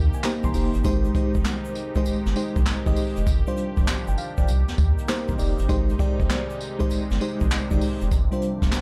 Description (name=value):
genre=R&B, new jack swing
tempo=99 BPM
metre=4/4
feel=swing 66% on 16ths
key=unclear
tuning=A4 = 440 Hz
part: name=FM electric piano with tremolo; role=accompaniment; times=0.0-8.8 s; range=G3 to C6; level=-30 LUFS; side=equal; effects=phaser
part: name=sweeping resonant pad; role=sustained chords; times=0.0-8.8 s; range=C3 to G4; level=-37 LUFS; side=equal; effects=chorus
part: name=round analog bass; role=bass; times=0.0-8.8 s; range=F1 to Eb2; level=-26 LUFS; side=equal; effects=none
part: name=jazz brush drum kit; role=drums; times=0.1-8.8 s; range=handclaps, hi-hat, kick drum, snare drum, tambourine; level=-26 LUFS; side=equal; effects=none
part: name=egg shaker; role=percussion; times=0.1-8.8 s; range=none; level=-54 LUFS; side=equal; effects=none
room=small room ambience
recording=dark, warm production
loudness=-23 LUFS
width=mono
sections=0.0-8.8 A section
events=FM electric piano fill 0.0-0.8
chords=0.0 Cm7; 3.3 G7sus4; 4.5 Cm7; 5.7 Abmaj7; 8.1 G7sus4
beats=0.24 | 0.84 1.45 2.05 2.66 | 3.27 3.87 4.48 5.08 | 5.69 6.30 6.90 7.51 | 8.12 8.72